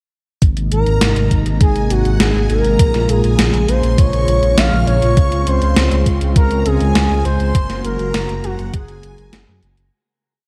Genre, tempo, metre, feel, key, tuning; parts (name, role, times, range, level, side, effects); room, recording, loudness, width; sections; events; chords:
synthwave; 101 BPM; 4/4; straight; Ab mixolydian; A4 = 440 Hz
warm analog pad; sustained chords; 0.4-9.9 s; C3 to Gb4; -24 LUFS; equal; chorus, sidechain pumping, shimmer reverb
dark detuned saw bass; bass; 0.4-9.9 s; Gb1 to Gb2; -19 LUFS; equal; sidechain pumping
electronic kick drum; drums; 0.4-8.9 s; -15 LUFS; equal
gated 80s digital drum machine; drums; 0.4-9.9 s; hi-hat, snare drum; -22 LUFS; equal; gated reverb, gated reverb snare
expressive synth lead; melody; 0.7-9.6 s; Gb4 to F5; -22 LUFS; equal; chorus, delay, shimmer reverb
string machine, violins; second line; 0.7-9.6 s; Gb5 to F6; -34 LUFS; equal; ensemble chorus, delay, shimmer reverb
light reverb, digital ambience; dark, warm production; -15 LUFS; mono
0.4-9.9 verse
fade-out 6.8-9.9
0.4 Abadd9; 2.8 Bbm7; 5.2 Dbmaj7; 7.5 Gbadd9